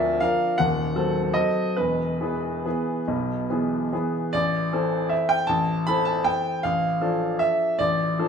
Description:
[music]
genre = classical, piano waltz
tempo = 136-167 BPM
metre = 3/4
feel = rubato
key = A minor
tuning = A4 = 440 Hz
[part]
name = bright grand piano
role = solo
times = 0.0-8.3 s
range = D1 to B5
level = -21 LUFS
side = equal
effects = none
[sound]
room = wet large studio reverb, RT60 1.4 s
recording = minimal, uncompressed stereo recording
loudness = -21 LUFS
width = side -6 dB against mid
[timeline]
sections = 0.0-4.3 A section; 4.3-8.3 B section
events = none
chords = 0.0 Bb/D; 0.6 D#dim7; 1.8 E; 4.3 Am; 6.6 Dm/A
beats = 0.20 | 0.58 0.94 1.34 | 1.77 2.21 2.65 | 3.08 3.50 3.92 | 4.34 4.73 5.11 | 5.49 5.88 6.26 | 6.64 7.01 7.40 | 7.80 8.18

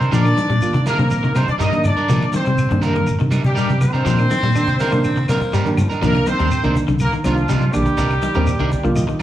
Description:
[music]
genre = afrobeat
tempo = 122 BPM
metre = 4/4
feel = straight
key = C minor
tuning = A4 = 440 Hz
[part]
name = warm horn section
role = melody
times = 0.0-9.2 s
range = F3 to Eb5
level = -22 LUFS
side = equal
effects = slapback echo
[part]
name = electric guitar at the edge of break-up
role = stabs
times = 0.0-9.2 s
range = G3 to Bb4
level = -26 LUFS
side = right 6 dB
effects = slapback echo
[part]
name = hollow-body short-scale fingered electric bass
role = bass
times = 0.0-9.0 s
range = Bb1 to C3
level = -19 LUFS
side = equal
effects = none
[part]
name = shekere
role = percussion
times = 0.0-9.2 s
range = none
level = -28 LUFS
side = equal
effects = none
[part]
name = electric guitar at the edge of break-up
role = arpeggios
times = 0.1-9.2 s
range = D3 to G3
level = -26 LUFS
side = left 6 dB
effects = slapback echo
[part]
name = cajon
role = drums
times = 0.1-9.2 s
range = none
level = -29 LUFS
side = equal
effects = none
[part]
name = reed electric piano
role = accompaniment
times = 0.2-9.2 s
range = Eb3 to Eb5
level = -23 LUFS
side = right 2 dB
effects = slapback echo
[part]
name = claves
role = percussion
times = 0.3-9.2 s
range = none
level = -36 LUFS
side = left 4 dB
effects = none
[part]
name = congas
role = percussion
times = 0.4-9.1 s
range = none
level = -26 LUFS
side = right 1 dB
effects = none
[part]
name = raspy baritone saxophone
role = second line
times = 4.3-6.0 s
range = G3 to C4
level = -24 LUFS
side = left 1 dB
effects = slapback echo
[sound]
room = small room ambience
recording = live gig heard through the venue's PA, club reverb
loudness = -15 LUFS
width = side -13 dB against mid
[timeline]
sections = 0.0-6.0 A section; 6.0-9.2 B section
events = reed electric piano fill 8.5-9.2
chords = 0.0 Cm9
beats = | 0.13 0.62 1.11 1.60 | 2.09 2.58 3.07 3.56 | 4.05 4.54 5.03 5.52 | 6.01 6.50 6.99 7.48 | 7.97 8.46 8.96

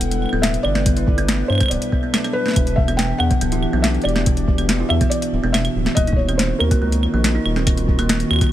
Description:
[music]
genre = IDM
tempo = 141 BPM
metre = 4/4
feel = straight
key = unclear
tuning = A4 = 442 Hz
[part]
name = felt-muted upright piano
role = melody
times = 0.0-8.5 s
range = A#4 to G5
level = -26 LUFS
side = left 1 dB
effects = ping-pong delay
[part]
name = warbly tape-like pad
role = sustained chords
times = 0.0-8.5 s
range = D#3 to F#5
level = -26 LUFS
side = left 1 dB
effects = chorus, built-in reverb
[part]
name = round analog bass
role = bass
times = 0.0-8.4 s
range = D1 to G2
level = -21 LUFS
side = equal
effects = none
[part]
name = booming analog drum machine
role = drums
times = 0.0-8.5 s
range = claves, hi-hat, snare drum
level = -22 LUFS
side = equal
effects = none
[part]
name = kalimba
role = arpeggios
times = 0.3-8.5 s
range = B2 to E4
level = -24 LUFS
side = right 2 dB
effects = ping-pong delay
[part]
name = electronic kick drum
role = drums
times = 0.9-8.5 s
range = none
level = -19 LUFS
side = equal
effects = none
[sound]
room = little or no reverb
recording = none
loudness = -16 LUFS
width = side -12 dB against mid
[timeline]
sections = 0.0-8.5 A section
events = none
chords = 0.0 G6; 6.0 D#madd9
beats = 0.01 0.43 | 0.86 1.29 1.71 2.14 | 2.56 2.99 3.41 3.84 | 4.26 4.69 5.12 5.54 | 5.97 6.39 6.82 7.24 | 7.67 8.09 8.52

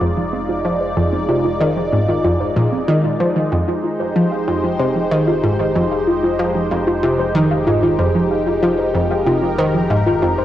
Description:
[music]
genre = ambient, sequencer-driven space music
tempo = 94 BPM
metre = 4/4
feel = straight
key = F dorian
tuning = A4 = 440 Hz
[part]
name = lush unison pad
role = sustained chords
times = 0.0-10.4 s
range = Ab3 to D5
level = -20 LUFS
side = equal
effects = chorus, phaser
[part]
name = soft round pluck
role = arpeggios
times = 0.0-10.4 s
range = F3 to F5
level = -20 LUFS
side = equal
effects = chorus, auto-pan, analog delay
[part]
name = analog pluck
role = riff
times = 0.0-10.3 s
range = F2 to F3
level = -19 LUFS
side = equal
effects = chorus, cassette tape, analog delay
[part]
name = round analog bass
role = bass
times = 0.0-10.4 s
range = F1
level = -32 LUFS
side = equal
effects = none
[sound]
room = wet spring reverb, RT60 1.6 s, digital ambience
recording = home recording on cassette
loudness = -15 LUFS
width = side -12 dB against mid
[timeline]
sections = 0.0-10.4 A section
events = filter sweep on synth arpeggio sound 0.0-10.4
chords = 0.0 Fm7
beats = 0.33 | 0.97 1.60 2.24 2.88 | 3.52 4.16 4.80 5.43 | 6.07 6.71 7.35 7.99 | 8.63 9.26 9.90

